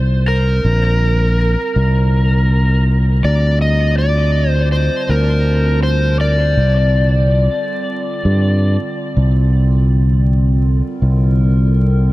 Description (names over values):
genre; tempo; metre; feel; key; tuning
ambient dub; 81 BPM; 4/4; straight; unclear; A4 = 438 Hz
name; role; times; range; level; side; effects
warbly tape-like pad; sustained chords; 0.0-12.1 s; D3 to A5; -25 LUFS; equal; chorus, built-in reverb
fingered electric bass; bass; 0.0-12.1 s; Bb1 to G2; -13 LUFS; equal; tube saturation
overdriven slide guitar; melody; 0.3-8.8 s; Bb4 to Eb5; -20 LUFS; left 1 dB; vintage 12-bit sampler grit, dub echo
room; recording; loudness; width
digital ambience; dark, warm production, vinyl crackle; -12 LUFS; side -18 dB against mid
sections
0.0-12.1 A section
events
fade-in on ambient pad 0.0-12.1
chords
0.0 C5; 3.2 Dm7; 9.2 C5